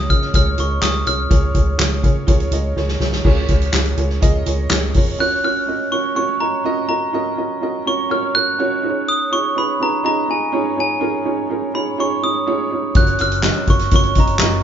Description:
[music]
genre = piano-driven pop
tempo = 124 BPM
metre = 4/4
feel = straight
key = F# major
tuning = A4 = 440 Hz
[part]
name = glockenspiel with hard plastic mallets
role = melody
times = 0.0-14.6 s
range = G#5 to F#6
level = -20 LUFS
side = equal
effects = none
[part]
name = dark upright piano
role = accompaniment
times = 0.0-14.6 s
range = C#3 to D#5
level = -21 LUFS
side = right 3 dB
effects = none
[part]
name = vintage muted fingered electric bass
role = bass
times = 0.0-5.2, 13.0-14.6 s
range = E#1 to C#3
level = -21 LUFS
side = equal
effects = none
[part]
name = soft-mallet drum kit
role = drums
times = 0.1-5.1, 12.9-14.5 s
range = crash cymbal, handclaps, hi-hat, kick drum, snare drum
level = -17 LUFS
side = left 1 dB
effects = none
[part]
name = group handclap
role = percussion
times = 3.7-4.8, 13.4-14.5 s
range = none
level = -33 LUFS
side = left 3 dB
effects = none
[sound]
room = moderate large studio reverb, RT60 1.1 s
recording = band playing live in one room, nothing above 7.5 kHz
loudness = -15 LUFS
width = side -9 dB against mid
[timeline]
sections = 0.0-3.3 A section; 3.3-5.2 B section; 5.2-14.6 C section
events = drum fill 2.8-3.3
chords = 0.0 C#6; 5.2 F#maj7; 8.8 C#add9; 13.0 F#maj7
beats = 0.34 0.83 | 1.31 1.80 2.28 2.77 | 3.25 3.74 4.22 4.71 | 5.20 5.68 6.17 6.65 | 7.13 7.62 8.11 8.59 | 9.07 9.56 10.04 10.53 | 11.02 11.50 11.98 12.47 | 12.95 13.44 13.92 14.41

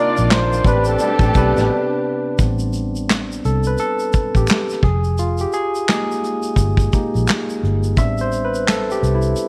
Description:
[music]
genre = R&B, neo-soul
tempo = 86 BPM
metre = 4/4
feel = swing 63% on 16ths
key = unclear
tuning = A4 = 440 Hz
[part]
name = breathy flugelhorn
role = melody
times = 0.0-2.0 s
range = A4 to D5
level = -23 LUFS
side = equal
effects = slapback echo
[part]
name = barky tine electric piano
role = accompaniment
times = 0.0-9.5 s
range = C3 to E5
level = -23 LUFS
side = equal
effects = overdrive
[part]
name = warm symphonic string section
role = sustained chords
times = 0.0-2.4 s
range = C3 to D5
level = -30 LUFS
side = equal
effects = none
[part]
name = vintage muted fingered electric bass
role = bass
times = 0.2-9.3 s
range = F1 to C2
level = -22 LUFS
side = equal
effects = none
[part]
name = tube shaker and finger snaps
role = percussion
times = 0.2-9.5 s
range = none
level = -36 LUFS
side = equal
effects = none
[part]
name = vintage brush drum kit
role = drums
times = 0.3-9.5 s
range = handclaps, hi-hat, kick drum, snare drum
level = -20 LUFS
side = equal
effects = none
[part]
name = warm trombone section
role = stabs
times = 1.0-1.8 s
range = B2 to D4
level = -29 LUFS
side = equal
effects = slapback echo
[sound]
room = light reverb, studio ambience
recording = none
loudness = -18 LUFS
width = mono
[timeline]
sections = 0.0-2.4 A section; 2.4-9.5 B section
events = band accent 0.0-2.4; break 1.7-2.4; tine electric piano solo 2.4-9.5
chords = 0.0 Cm11; 0.6 Am11; 4.8 Fm11; 8.0 Am11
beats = 0.29 0.99 1.69 | 2.39 3.08 3.78 4.48 | 5.18 5.88 6.57 7.27 | 7.97 8.67 9.36

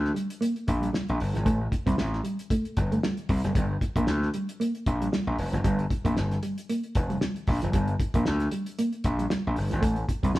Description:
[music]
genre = funk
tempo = 115 BPM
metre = 4/4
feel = swing 56% on 16ths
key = G minor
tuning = A4 = 439 Hz
[part]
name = gritty slap bass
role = bass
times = 0.0-10.4 s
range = F1 to D2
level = -27 LUFS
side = equal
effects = overdrive
[part]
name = mellow electric guitar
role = riff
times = 0.1-10.3 s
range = F3 to C4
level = -30 LUFS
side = right 1 dB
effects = none
[part]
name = cloth-damped thuddy drum kit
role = drums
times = 0.1-10.4 s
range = hi-hat, kick drum, snare drum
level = -29 LUFS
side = equal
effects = none
[sound]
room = moderate stone room reverb, RT60 0.9 s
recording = band playing live in one room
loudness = -25 LUFS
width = side -17 dB against mid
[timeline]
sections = 0.0-10.4 A section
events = none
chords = 0.0 Gm; 1.5 Am7; 3.6 Gm; 9.8 Am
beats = 0.42 0.94 | 1.47 1.99 2.51 3.03 | 3.56 4.08 4.60 5.12 | 5.64 6.17 6.69 7.21 | 7.74 8.26 8.78 9.30 | 9.83 10.35

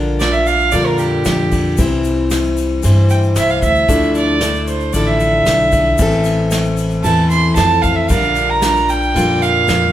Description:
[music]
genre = acoustic folk duo or small band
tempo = 114 BPM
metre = 4/4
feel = straight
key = unclear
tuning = A4 = 440 Hz
[part]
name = picked plugged-in steel-string acoustic guitar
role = accompaniment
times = 0.0-9.9 s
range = A2 to C5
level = -17 LUFS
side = left 2 dB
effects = none
[part]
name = upright bass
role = bass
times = 0.0-9.9 s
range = A1 to G2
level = -18 LUFS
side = equal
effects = none
[part]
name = warm fiddle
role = second line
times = 0.2-9.9 s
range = G4 to C6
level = -16 LUFS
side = right 3 dB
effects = none
[part]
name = soft brush drum kit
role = drums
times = 0.2-9.8 s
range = kick drum, ride cymbal, snare drum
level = -22 LUFS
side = equal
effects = none
[part]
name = egg shaker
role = percussion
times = 0.2-9.8 s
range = none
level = -32 LUFS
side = left 8 dB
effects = none
[sound]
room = moderate large studio reverb, RT60 1.1 s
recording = band playing live in one room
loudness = -12 LUFS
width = side -12 dB against mid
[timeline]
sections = 0.0-9.9 A section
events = fiddle solo 0.0-9.9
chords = 0.0 Bb6; 1.8 C; 3.9 Dmadd9; 6.0 Am; 8.1 Bb6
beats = 0.21 0.73 1.26 | 1.78 2.31 2.83 3.36 | 3.89 4.41 4.94 5.46 | 5.99 6.52 7.05 7.57 | 8.10 8.63 9.16 9.68

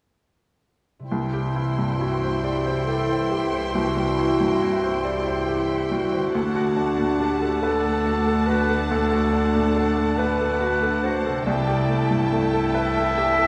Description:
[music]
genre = cinematic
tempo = 47 BPM (dotted quarters)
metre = 6/8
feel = rubato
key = C lydian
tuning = A4 = 442 Hz
[part]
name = concert harp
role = arpeggios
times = 1.0-13.5 s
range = C3 to F#5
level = -33 LUFS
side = equal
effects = none
[part]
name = mellow clarinet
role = second line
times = 1.1-13.5 s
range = E4 to E5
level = -27 LUFS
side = equal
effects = none
[part]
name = rich studio violin section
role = second line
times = 1.1-13.5 s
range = F#5 to C6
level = -32 LUFS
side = equal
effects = none
[part]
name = bright grand piano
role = accompaniment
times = 1.1-13.5 s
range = C2 to D5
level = -29 LUFS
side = equal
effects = none
[part]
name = rich studio viola section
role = accompaniment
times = 1.1-13.5 s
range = E3 to E4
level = -31 LUFS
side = equal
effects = none
[part]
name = warm studio cello section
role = bass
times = 1.1-13.5 s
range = C2 to D2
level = -30 LUFS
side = equal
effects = none
[sound]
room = wet scoring stage reverb, RT60 2.0 s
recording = heard from further back in the room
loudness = -22 LUFS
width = mono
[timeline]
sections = 1.1-13.5 A section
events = none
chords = 1.1 C; 6.3 D; 11.5 Am7/C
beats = | 1.11 2.43 | 3.74 5.04 | 6.33 7.62 | 8.90 10.18 | 11.47 12.74

